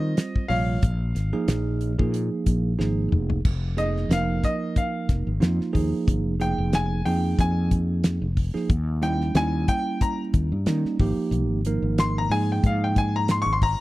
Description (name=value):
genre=electric jazz fusion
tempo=92 BPM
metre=4/4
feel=swing 56% on 16ths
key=F minor from 3.4 s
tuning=A4 = 440 Hz
part: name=bright baby grand piano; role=melody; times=0.0-13.8 s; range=Eb5 to Db6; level=-28 LUFS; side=left 2 dB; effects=slapback echo
part: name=bell-like tine electric piano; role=accompaniment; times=0.0-13.5 s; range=C3 to Db5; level=-27 LUFS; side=right 4 dB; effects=none
part: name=fretless electric bass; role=bass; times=0.0-13.8 s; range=F1 to Eb3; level=-24 LUFS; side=left 1 dB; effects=none
part: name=damped 70s drum kit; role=drums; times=0.2-13.8 s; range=crash cymbal, hi-hat, kick drum, snare drum, toms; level=-23 LUFS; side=left 1 dB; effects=none
room=small room ambience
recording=dry, close 1970s-style studio recording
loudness=-21 LUFS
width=side -18 dB against mid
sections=0.0-3.4 A section; 3.4-13.8 B section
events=drum fill 2.8-3.4; grand piano solo 3.4-13.8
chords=0.0 Eb7; 0.8 Fm7; 8.7 Eb7b9; 11.0 Abmaj7(no3)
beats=0.17 | 0.83 1.48 2.14 2.79 | 3.45 4.11 4.76 5.42 | 6.07 6.73 7.39 8.04 | 8.70 9.35 10.01 10.67 | 11.32 11.98 12.63 13.29